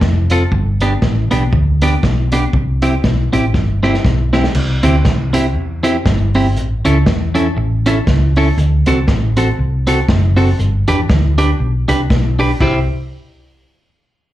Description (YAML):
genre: ska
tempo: 119 BPM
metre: 4/4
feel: swing 58% on 8ths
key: C major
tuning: A4 = 440 Hz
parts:
  - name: hollow-body short-scale fingered electric bass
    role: bass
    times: 0.0-12.9 s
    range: F1 to E2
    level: -14 LUFS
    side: equal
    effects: none
  - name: vintage drum kit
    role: drums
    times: 0.0-12.7 s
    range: china cymbal, crash cymbal, hi-hat, kick drum, snare drum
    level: -18 LUFS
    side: equal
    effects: slapback echo
  - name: clean electric guitar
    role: accompaniment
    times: 0.3-12.8 s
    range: B3 to C5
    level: -17 LUFS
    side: right 1 dB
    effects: plate reverb, slapback echo
room: light reverb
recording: live gig heard through the venue's PA, club reverb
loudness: -12 LUFS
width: side -14 dB against mid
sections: 0.0-4.5 A section; 4.5-12.6 B section; 12.6-14.3 C section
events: drum fill 3.5-4.5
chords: 0.0 F; 0.5 G; 2.5 C; 6.6 A; 8.6 D7; 10.6 G; 12.6 C